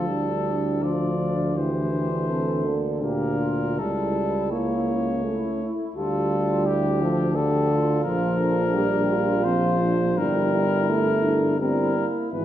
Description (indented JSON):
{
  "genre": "classical, hymn-like piece for brass band",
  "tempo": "74-88 BPM",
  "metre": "3/4",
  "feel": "rubato",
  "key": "unclear",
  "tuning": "A4 = 440 Hz",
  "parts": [
    { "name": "clear cornet", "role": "melody", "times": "0.0-12.4 s", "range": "G4 to D5", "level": "-29 LUFS", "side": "left 5 dB", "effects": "none" },
    { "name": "mellow French horn section", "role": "second line", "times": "0.0-12.4 s", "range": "D4 to A4", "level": "-30 LUFS", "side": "right 3 dB", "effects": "none" },
    { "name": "warm euphonium", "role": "accompaniment", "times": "0.0-12.4 s", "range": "Bb3 to G4", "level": "-31 LUFS", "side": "left 3 dB", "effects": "none" },
    { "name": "warm euphonium", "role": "accompaniment", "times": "0.0-12.4 s", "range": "Bb2 to Bb3", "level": "-25 LUFS", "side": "right 2 dB", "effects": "none" },
    { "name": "warm tuba", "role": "bass", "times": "0.0-12.4 s", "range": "G1 to D2", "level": "-27 LUFS", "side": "left 1 dB", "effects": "none" }
  ],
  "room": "wet recital hall reverb, RT60 1.7 s",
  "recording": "heard from further back in the room, nothing above 10.7 kHz",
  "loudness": "-21 LUFS",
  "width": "side -12 dB against mid",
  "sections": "0.0-12.4 A section",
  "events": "none",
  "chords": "0.0 Dm; 1.6 Em7b5/D; 3.8 A7/C#; 6.0 Dm; 8.0 Bb; 10.2 Em7b5/G"
}